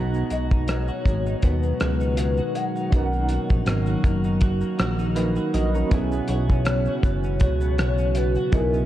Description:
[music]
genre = indie pop, bedroom pop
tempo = 80 BPM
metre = 4/4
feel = swing 55% on 16ths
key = unclear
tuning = A4 = 441 Hz
[part]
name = soft electric-piano-like synth keys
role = accompaniment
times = 0.0-8.9 s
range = B3 to A#5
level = -31 LUFS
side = right 5 dB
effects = chorus, tremolo, cassette tape
[part]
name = twelve-string electric guitar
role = accompaniment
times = 0.0-8.9 s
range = B2 to F#4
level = -31 LUFS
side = left 2 dB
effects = wide subtle chorus, warbly pitch drift
[part]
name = warbly tape-like pad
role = sustained chords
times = 0.8-8.9 s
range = C#3 to F#4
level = -29 LUFS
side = right 1 dB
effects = chorus, built-in reverb, phaser
[part]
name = chorused synth bass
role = bass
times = 0.0-8.9 s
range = F#1 to D#2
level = -24 LUFS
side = equal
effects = none
[part]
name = cloth-damped thuddy drum kit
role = drums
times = 0.1-8.9 s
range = hi-hat, kick drum, rim click, shaker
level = -23 LUFS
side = equal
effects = none
[part]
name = hollow clarinet-like synth lead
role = melody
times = 0.3-8.9 s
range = A#4 to F#5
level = -29 LUFS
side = left 2 dB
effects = ensemble chorus, diffuse ambient delay
[sound]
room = moderate church reverb, RT60 3.4 s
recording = dreamy mix soaked in reverb, cassette tape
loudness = -20 LUFS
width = side -13 dB against mid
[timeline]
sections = 0.0-8.9 A section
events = none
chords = 0.0 G#m7; 2.9 Bmaj7; 5.9 F#7sus4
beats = 0.69 1.43 2.18 | 2.93 3.67 4.42 5.17 | 5.91 6.66 7.41 8.15

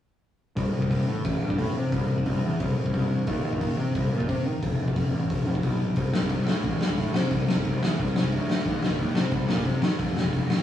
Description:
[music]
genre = punk rock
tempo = 178 BPM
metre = 4/4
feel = straight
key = unclear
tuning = A4 = 440 Hz
[part]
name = fuzz picked electric bass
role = bass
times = 0.6-10.6 s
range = F1 to Eb3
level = -26 LUFS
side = left 1 dB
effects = overdrive
[part]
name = raw garage drum kit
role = drums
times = 0.6-10.6 s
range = hi-hat, kick drum, snare drum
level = -26 LUFS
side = left 1 dB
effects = none
[sound]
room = moderate booth ambience, RT60 0.2 s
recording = rough rehearsal-room recording, studio reverb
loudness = -23 LUFS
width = side -11 dB against mid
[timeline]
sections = 0.6-10.6 A section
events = none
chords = none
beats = | 0.58 0.92 1.25 1.59 | 1.93 2.27 2.61 2.94 | 3.28 3.62 3.96 4.30 | 4.63 4.97 5.31 5.64 | 5.98 6.32 6.65 6.99 | 7.33 7.66 8.00 8.33 | 8.67 9.00 9.34 9.67 | 10.01 10.35

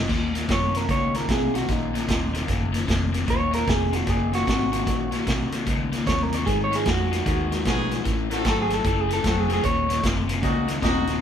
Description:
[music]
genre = electric blues shuffle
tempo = 151 BPM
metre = 4/4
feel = swing 64% on 8ths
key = Eb minor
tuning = A4 = 440 Hz
[part]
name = electric guitar through a small old amp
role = melody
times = 0.0-10.0 s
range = Eb4 to Db5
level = -26 LUFS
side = right 2 dB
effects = none
[part]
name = crunchy overdriven guitar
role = riff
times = 0.0-11.2 s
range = Eb2 to F#3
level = -26 LUFS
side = left 5 dB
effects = phaser
[part]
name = vintage muted fingered electric bass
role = bass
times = 0.0-11.2 s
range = Eb1 to Ab2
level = -28 LUFS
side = equal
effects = none
[part]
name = vintage drum kit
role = drums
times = 0.1-11.1 s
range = crash cymbal, hi-hat, kick drum, snare drum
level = -26 LUFS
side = right 1 dB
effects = none
[part]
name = warm horn section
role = stabs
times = 7.3-11.2 s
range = Cb4 to A4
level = -29 LUFS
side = equal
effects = none
[sound]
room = light reverb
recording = band playing live in one room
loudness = -21 LUFS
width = side -8 dB against mid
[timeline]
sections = 0.1-11.2 A section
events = clean electric guitar solo 0.1-11.2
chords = 0.1 Ebm7; 6.5 Abm7; 8.1 Am6; 9.6 Ebm7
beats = | 0.10 0.50 0.89 1.29 | 1.69 2.09 2.49 2.88 | 3.28 3.68 4.08 4.48 | 4.87 5.27 5.67 6.07 | 6.46 6.86 7.26 7.66 | 8.05 8.45 8.85 9.24 | 9.64 10.04 10.43 10.83

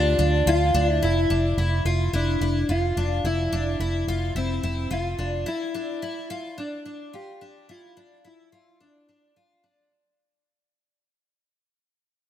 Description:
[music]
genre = dream pop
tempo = 108 BPM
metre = 4/4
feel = straight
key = unclear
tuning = A4 = 440 Hz
[part]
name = mellow electric guitar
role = melody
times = 0.0-9.3 s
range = C4 to G4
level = -27 LUFS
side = left 1 dB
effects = analog chorus, tape echo
[part]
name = picked twelve-string acoustic guitar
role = arpeggios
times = 0.0-9.9 s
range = D4 to F4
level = -28 LUFS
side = left 2 dB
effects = lush chorus, tape echo
[part]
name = vintage muted fingered electric bass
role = bass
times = 0.0-5.4 s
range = F1 to D2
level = -24 LUFS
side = right 1 dB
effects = none
[sound]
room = moderate lush hall reverb, RT60 1.9 s, small room ambience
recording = none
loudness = -22 LUFS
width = side -11 dB against mid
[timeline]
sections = 0.0-1.0 A section; 1.0-9.9 B section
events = fade-out 1.0-9.9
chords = 0.0 Dm; 1.0 F5; 5.5 N.C.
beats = 0.47 | 1.02 1.58 2.13 2.69 | 3.24 3.80 4.35 4.91 | 5.46 6.02 6.58 7.13 | 7.69 8.24 8.80 9.35

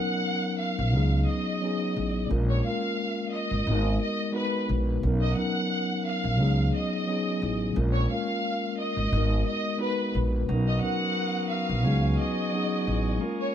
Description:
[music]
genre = hip hop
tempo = 88 BPM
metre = 4/4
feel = swing 54% on 16ths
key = unclear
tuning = A4 = 440 Hz
[part]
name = bright studio violin section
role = melody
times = 0.0-13.5 s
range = B4 to F#5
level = -31 LUFS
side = equal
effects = high-pass filter, low-pass filter, digital delay
[part]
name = mellow tine electric piano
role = accompaniment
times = 0.0-13.5 s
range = F#3 to B4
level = -29 LUFS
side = left 2 dB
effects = medium stereo tremolo, cassette tape, high-pass filter, low-pass filter
[part]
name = upright bass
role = bass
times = 0.8-13.2 s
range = G#1 to C#2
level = -25 LUFS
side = equal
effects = none
[part]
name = tonewheel organ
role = sustained chords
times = 10.5-13.5 s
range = B3 to D#6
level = -38 LUFS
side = right 1 dB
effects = stopped rotary speaker, high-pass filter, low-pass filter
[sound]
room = light reverb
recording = none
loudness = -24 LUFS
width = side -10 dB against mid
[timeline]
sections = 0.0-13.5 A section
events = break 13.2-13.5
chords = 0.0 Bmaj7; 0.9 C#7sus4; 2.3 A#m7; 3.7 G#m7; 5.0 Bmaj7; 6.4 C#7sus4; 7.8 A#m7; 9.1 G#m7; 10.5 Bmaj7; 11.9 C#7sus4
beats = 0.26 0.94 1.62 | 2.31 2.99 3.67 4.35 | 5.03 5.71 6.40 7.08 | 7.76 8.44 9.12 9.80 | 10.49 11.17 11.85 12.53 | 13.21

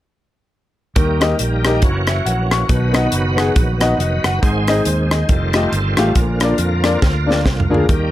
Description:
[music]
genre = uptempo gospel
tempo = 139 BPM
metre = 4/4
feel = swing 58% on 8ths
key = unclear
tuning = A4 = 441 Hz
[part]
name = bright upright piano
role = accompaniment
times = 1.0-8.1 s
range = Ab2 to Db6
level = -19 LUFS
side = left 2 dB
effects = none
[part]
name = bright tonewheel organ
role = sustained chords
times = 1.0-8.1 s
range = D3 to C5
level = -22 LUFS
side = right 2 dB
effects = slow rotary speaker, chorus vibrato
[part]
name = fingered electric bass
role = bass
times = 1.0-8.1 s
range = F1 to F2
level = -19 LUFS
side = equal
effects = none
[part]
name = tight funk drum kit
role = drums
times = 1.0-8.0 s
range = hi-hat, kick drum, rim click, snare drum, toms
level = -18 LUFS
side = equal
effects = none
[sound]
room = light reverb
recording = none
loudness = -14 LUFS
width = side -14 dB against mid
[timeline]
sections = 1.0-7.9 A section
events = drum fill 7.0-7.9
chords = 1.0 Eb; 1.8 Gb7; 2.7 B; 4.4 Ab; 5.3 F9; 6.2 Bb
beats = | 0.96 1.40 1.83 2.26 | 2.69 3.13 3.56 3.99 | 4.43 4.86 5.29 5.72 | 6.16 6.59 7.02 7.46 | 7.89

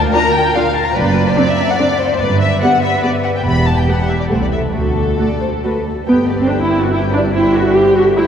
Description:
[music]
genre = quick classical-period movement for string orchestra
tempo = 143 BPM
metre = 3/4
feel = rubato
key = G major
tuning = A4 = 440 Hz
[part]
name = warm chamber violin section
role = second line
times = 0.0-8.3 s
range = F#4 to D5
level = -21 LUFS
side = left 1 dB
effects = none
[part]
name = dark chamber cello section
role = bass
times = 0.0-8.3 s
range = C2 to G2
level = -21 LUFS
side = right 1 dB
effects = none
[part]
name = warm chamber double bass section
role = bass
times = 0.0-8.3 s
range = E1 to D2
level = -20 LUFS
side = right 2 dB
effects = none
[part]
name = warm symphonic violin section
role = melody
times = 0.1-8.3 s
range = A4 to B5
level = -18 LUFS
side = left 3 dB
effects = none
[part]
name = warm symphonic viola section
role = accompaniment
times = 0.1-8.2 s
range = A3 to G4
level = -16 LUFS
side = right 1 dB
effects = none
[sound]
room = wet cathedral reverb, RT60 5.6 s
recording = dark, warm production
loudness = -12 LUFS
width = side -8 dB against mid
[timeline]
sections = 0.0-6.1 A section; 6.1-8.3 B section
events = none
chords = 0.0 Bb/D; 1.0 D7/F#; 2.2 G; 3.5 Em; 4.3 Am/C; 4.7 D; 6.1 G; 7.3 Am7/G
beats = 0.13 0.55 | 0.96 1.37 1.79 | 2.20 2.62 3.04 | 3.46 3.88 4.31 | 4.75 5.19 5.64 | 6.08 6.50 6.93 | 7.35 7.76 8.18

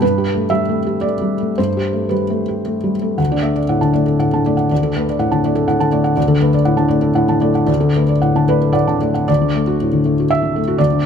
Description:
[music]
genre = neoclassical minimalist piano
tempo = 108-126 BPM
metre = 3/4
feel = rubato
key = unclear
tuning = A4 = 440 Hz
[part]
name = felt-muted upright piano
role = solo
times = 0.0-11.1 s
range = D2 to A5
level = -14 LUFS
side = equal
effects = none
[sound]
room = light reverb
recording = close, detailed microphones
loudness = -14 LUFS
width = side -7 dB against mid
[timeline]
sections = 0.0-3.2 A section; 3.2-9.3 B section; 9.3-11.1 C section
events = none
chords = 0.0 Gadd9; 3.2 D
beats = | 0.02 0.51 1.03 | 1.58 2.12 2.66 | 3.19 3.70 4.21 | 4.71 5.20 5.69 | 6.17 6.65 7.16 | 7.68 8.22 8.75 | 9.29 9.79 10.29 | 10.78

